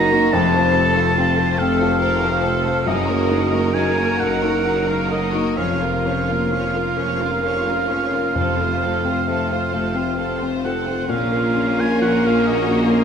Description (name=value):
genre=classical, romantic movement for piano and orchestra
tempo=42-48 BPM (dotted quarters)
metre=12/8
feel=rubato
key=Bb minor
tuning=A4 = 440 Hz
part: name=clear symphonic violin section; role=melody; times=0.0-13.0 s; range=Gb4 to Db5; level=-29 LUFS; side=left 4 dB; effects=none
part: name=warm concert grand piano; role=melody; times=0.0-13.0 s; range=F2 to C5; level=-21 LUFS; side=left 2 dB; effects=none
part: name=clear oboe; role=second line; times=0.0-13.0 s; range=Eb5 to Bb5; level=-23 LUFS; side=right 2 dB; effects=none
part: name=clear symphonic violin section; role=second line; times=0.0-13.0 s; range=A3 to Gb4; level=-30 LUFS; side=left 3 dB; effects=none
part: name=rich symphonic viola section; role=accompaniment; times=0.0-13.0 s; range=F3 to Bb3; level=-26 LUFS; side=equal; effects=none
part: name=clear studio double bass section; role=bass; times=0.0-13.0 s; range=F1 to Bb1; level=-29 LUFS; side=right 4 dB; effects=none
part: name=rich studio cello section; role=bass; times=0.0-13.0 s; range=Eb4 to Bb4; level=-28 LUFS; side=right 3 dB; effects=none
part: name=warm tuba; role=bass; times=0.0-13.0 s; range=F1 to Bb1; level=-27 LUFS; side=right 4 dB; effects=none
part: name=timpani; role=percussion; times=8.4-9.7 s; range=F2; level=-29 LUFS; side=equal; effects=none
room=wet recital hall reverb, RT60 1.4 s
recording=minimal, uncompressed stereo recording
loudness=-17 LUFS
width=side -7 dB against mid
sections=0.0-13.0 A section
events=none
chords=0.3 F; 2.9 Ebm/Gb; 5.6 Bbm/F; 8.4 F; 11.1 Bbm